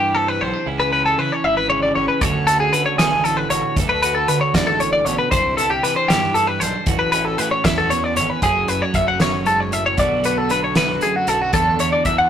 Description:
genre	math rock and midwest emo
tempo	77 BPM (dotted quarters)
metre	6/8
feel	straight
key	D lydian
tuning	A4 = 440 Hz
part	twelve-string electric guitar	accompaniment	0.0-12.3 s	D2 to A4	-24 LUFS	right 5 dB	none
part	twelve-string electric guitar	arpeggios	0.0-12.3 s	F#4 to F#5	-18 LUFS	left 2 dB	none
part	fuzz fingered electric bass	bass	0.0-12.3 s	F#1 to D3	-27 LUFS	equal	overdrive
part	loose indie drum kit	drums	2.2-12.2 s	hi-hat, kick drum, snare drum	-22 LUFS	right 1 dB	none
room	moderate stone room reverb, RT60 1.0 s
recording	rough rehearsal-room recording, tube saturation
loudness	-16 LUFS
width	side -9 dB against mid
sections	0.0-8.4 A section; 8.4-12.3 B section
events	none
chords	0.0 Cmaj9; 0.7 C#m7; 2.2 Dmaj7; 5.3 Cmaj9; 6.9 A69; 8.4 F#m9; 10.0 Bm7; 11.5 E7sus4

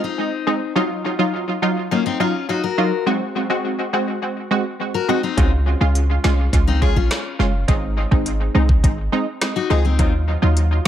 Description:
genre	dancehall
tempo	104 BPM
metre	4/4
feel	straight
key	unclear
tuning	A4 = 439 Hz
part	punchy chord stab	accompaniment	0.0-10.9 s	Gb3 to Gb4	-21 LUFS	right 1 dB	chorus, sidechain pumping, tape echo
part	picked steel-string acoustic guitar	arpeggios	0.0-10.1 s	Bb3 to Bb4	-22 LUFS	left 8 dB	none
part	warm 808-style bass	bass	5.4-10.9 s	Gb1 to Eb2	-18 LUFS	equal	none
part	island pop drum kit	drums	5.4-10.9 s	hi-hat, kick drum, rim click, snare drum	-19 LUFS	equal	tape echo
room	light reverb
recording	echo-heavy mix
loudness	-17 LUFS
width	side -10 dB against mid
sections	0.0-10.9 A section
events	none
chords	0.0 Ab; 0.8 Ebmadd9; 3.1 Ab7; 5.4 Db; 7.7 Ab; 10.0 Ebmadd9

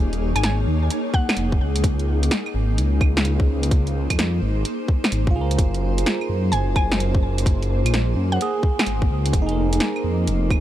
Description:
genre	future garage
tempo	128 BPM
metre	4/4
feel	swing 66% on 16ths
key	unclear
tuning	A4 = 440 Hz
part	bell-like tine electric piano	accompaniment	0.0-1.9, 5.3-10.6 s	Eb4 to Bb4	-28 LUFS	right 4 dB	phaser, sidechain pumping, tape echo
part	granular cloud pad	sustained chords	0.0-10.6 s	Bb3 to Db5	-28 LUFS	equal	built-in reverb, sidechain pumping
part	swelling detuned saw bass	bass	0.0-10.6 s	Eb1 to Gb2	-21 LUFS	equal	sidechain pumping
part	garage drum kit	drums	0.1-10.6 s	claves, hi-hat, snare drum	-25 LUFS	equal	overdrive
part	mallet-like synth pluck	melody	0.4-1.6, 6.5-8.8 s	Gb5 to Ab5	-31 LUFS	left 1 dB	chorus, tape echo
part	electronic kick drum	drums	1.1-10.6 s	none	-19 LUFS	equal	overdrive
room	little or no reverb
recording	none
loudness	-18 LUFS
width	side -12 dB against mid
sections	0.0-10.6 A section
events	none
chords	0.0 Ebm7; 1.8 Dbmaj7; 5.6 Gbmaj7; 9.3 Fm7

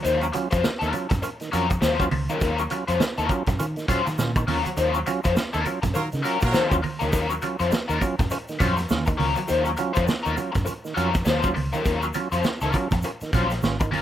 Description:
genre	funk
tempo	102 BPM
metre	4/4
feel	swing 60% on 16ths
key	unclear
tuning	A4 = 440 Hz
part	raw garage guitar	accompaniment	0.0-14.0 s	Gb3 to C5	-26 LUFS	left 4 dB	wah, overdrive, spring reverb
part	vintage muted fingered electric bass	bass	0.0-14.0 s	Gb1 to Eb3	-27 LUFS	equal	none
part	vintage drum kit	drums	0.0-14.0 s	hi-hat, kick drum, snare drum	-27 LUFS	equal	none
part	percussive tonewheel organ	stabs	0.1-14.0 s	Eb3 to F4	-30 LUFS	right 4 dB	overdrive, slow rotary speaker
part	egg shaker	percussion	0.1-13.9 s	none	-42 LUFS	left 2 dB	none
part	congas	percussion	0.4-14.0 s	none	-32 LUFS	right 6 dB	none
part	clear horn section	second line	5.9-6.8 s	Gb3 to Bb4	-27 LUFS	right 1 dB	none
room	light reverb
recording	rough home demo mix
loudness	-21 LUFS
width	side -11 dB against mid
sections	0.0-14.0 A section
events	band accent 4.8-7.1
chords	0.0 Ebm9

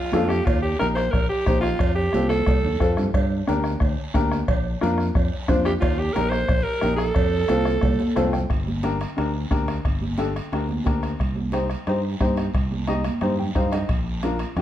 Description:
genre	latin, cumbia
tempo	179 BPM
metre	4/4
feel	straight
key	G minor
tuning	A4 = 440 Hz
part	raspy alto saxophone	melody	0.0-2.9, 5.7-8.3 s	F4 to C5	-24 LUFS	right 2 dB	none
part	clear upright piano	accompaniment	0.1-14.6 s	C4 to G5	-26 LUFS	left 3 dB	none
part	fingered electric bass	bass	0.1-14.6 s	G1 to G2	-25 LUFS	equal	none
part	bombo	percussion	0.1-14.6 s	none	-25 LUFS	equal	none
part	congas	percussion	0.1-14.6 s	none	-29 LUFS	right 1 dB	none
part	cowbell and timbales	percussion	0.1-14.6 s	none	-34 LUFS	right 4 dB	none
part	guiro	percussion	0.1-14.6 s	none	-44 LUFS	right 3 dB	none
room	moderate studio reverb, RT60 0.9 s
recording	heard from further back in the room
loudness	-20 LUFS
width	side -12 dB against mid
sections	0.0-8.5 A section; 8.5-14.6 B section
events	drum fill 2.3-3.1, 7.8-8.5, 12.9-13.9; upright piano fill 8.0-8.5, 13.2-13.9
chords	0.5 Eb; 1.8 F; 3.1 Gm; 4.5 Bb; 5.8 Eb; 7.2 F; 8.5 Gm; 11.2 Cm; 13.9 Bb

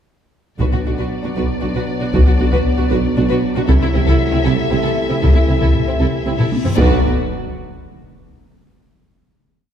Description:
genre	cinematic, epic orchestral film score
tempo	117 BPM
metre	3/4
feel	straight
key	B phrygian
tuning	A4 = 441 Hz
part	warm symphonic violin section	melody	0.6-7.1 s	D5 to E5	-28 LUFS	left 5 dB	none
part	warm symphonic violin section	second line	0.6-7.1 s	C4 to B4	-26 LUFS	left 3 dB	none
part	rich symphonic viola section	accompaniment	0.6-7.1 s	E4 to F#4	-26 LUFS	right 2 dB	none
part	bright trombone section	sustained chords	0.6-7.0 s	B2 to F#3	-26 LUFS	right 2 dB	none
part	dark French horn section	sustained chords	0.6-7.0 s	A3 to E4	-24 LUFS	left 1 dB	none
part	dark symphonic cello section	bass	0.6-7.1 s	B2 to C3	-24 LUFS	right 2 dB	none
part	rich symphonic double bass section	bass	0.6-7.1 s	B1 to C2	-24 LUFS	right 2 dB	none
part	warm tuba	bass	0.6-7.0 s	B1 to C2	-24 LUFS	right 4 dB	none
part	taiko ensemble	drums	0.6-7.8 s	none	-16 LUFS	left 1 dB	none
part	reverse cymbal and impact	sound effects	6.4-8.3 s	none	-32 LUFS	left 1 dB	none
room	wet scoring stage reverb, RT60 1.9 s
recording	heard from further back in the room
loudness	-14 LUFS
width	side -9 dB against mid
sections	0.6-6.8 theme; 6.8-8.3 final chord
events	drum fill 6.4-6.8; reverse cymbal 6.4-6.8; impact 6.8-8.3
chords	0.6 Bm; 3.7 Am/C; 6.8 Bm

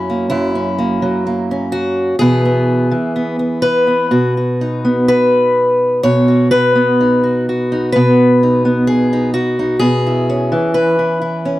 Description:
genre	folk, solo fingerstyle acoustic guitar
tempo	63 BPM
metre	4/4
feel	rubato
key	E major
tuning	A4 = 440 Hz
part	fingerpicked acoustic archtop guitar	solo	0.0-11.6 s	F#2 to C#5	-12 LUFS	equal	none
room	moderate booth ambience, RT60 0.2 s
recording	dry, close 1970s-style studio recording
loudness	-12 LUFS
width	side -16 dB against mid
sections	0.0-11.6 A section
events	none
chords	0.0 F#7; 2.2 E/B; 4.1 B; 9.8 E6/B

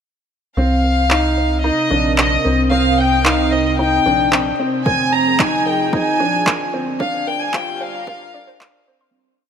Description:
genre	piano and strings electronica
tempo	112 BPM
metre	4/4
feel	straight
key	C minor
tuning	A4 = 440 Hz
part	dark chamber violin section	melody	0.6-8.9 s	Eb5 to Bb5	-18 LUFS	left 1 dB	none
part	lush unison pad	sustained chords	1.5-9.2 s	C3 to Eb6	-25 LUFS	right 1 dB	chorus, sidechain pumping
part	warbly dusty pluck	arpeggios	0.6-9.1 s	Bb4 to C6	-33 LUFS	right 3 dB	none
part	felt-muted upright piano	riff	0.6-9.1 s	C4 to F4	-20 LUFS	right 1 dB	none
part	round analog bass	bass	0.6-9.1 s	D1 to C2	-21 LUFS	equal	sidechain pumping
part	electronic handclaps	drums	1.1-8.7 s	none	-20 LUFS	equal	overdrive, studio reverb
part	electronic kick drum	drums	4.9-8.7 s	none	-23 LUFS	equal	overdrive, studio reverb
room	light reverb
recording	high-pass filter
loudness	-14 LUFS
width	side -8 dB against mid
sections	0.6-9.1 build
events	build-up 0.6-9.1; filter sweep on analog synth pad 0.6-9.1; filter sweep 0.6-9.1; fade-out 6.3-9.1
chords	0.6 Cm7; 4.9 Fm7; 7.0 Gm7

